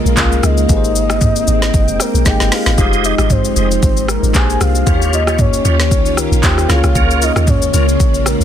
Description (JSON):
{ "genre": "amapiano", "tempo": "115 BPM", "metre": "4/4", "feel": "swing 55% on 16ths", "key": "unclear", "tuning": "A4 = 442 Hz", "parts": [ { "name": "soft octave-layered synth lead", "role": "melody", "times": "0.0-8.4 s", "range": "Bb4 to Ab5", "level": "-20 LUFS", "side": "left 1 dB", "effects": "chorus, tremolo, ping-pong delay" }, { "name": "tine electric piano", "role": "accompaniment", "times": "0.0-8.4 s", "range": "G3 to Eb5", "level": "-21 LUFS", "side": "left 4 dB", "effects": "phaser" }, { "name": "soft string machine", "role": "sustained chords", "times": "0.0-8.4 s", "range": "Db3 to G5", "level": "-21 LUFS", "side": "right 1 dB", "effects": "ensemble chorus, sidechain pumping" }, { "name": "deep log drum bass", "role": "bass", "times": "0.1-8.4 s", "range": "F1 to Eb2", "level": "-16 LUFS", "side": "equal", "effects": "none" }, { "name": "afro-pop drum kit", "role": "drums", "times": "0.1-8.4 s", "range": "handclaps, hi-hat, kick drum, rim click, shaker, snare drum, toms", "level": "-15 LUFS", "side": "equal", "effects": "none" }, { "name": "bright tonewheel organ", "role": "stabs", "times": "2.8-7.9 s", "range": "F4 to Eb5", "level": "-22 LUFS", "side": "right 3 dB", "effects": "chorus vibrato, slow rotary speaker, ping-pong delay" } ], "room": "little or no reverb", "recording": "dense, heavily limited modern master", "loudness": "-11 LUFS", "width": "side -10 dB against mid", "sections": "0.0-8.4 A section", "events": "drum fill 2.3-2.8", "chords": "0.0 Db6; 0.7 Abmaj9; 2.8 Fm9; 4.3 Bb13; 4.9 Eb9; 6.7 Db6", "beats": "0.17 | 0.69 1.22 1.74 2.26 | 2.78 3.30 3.82 4.35 | 4.87 5.39 5.91 6.43 | 6.95 7.48 8.00" }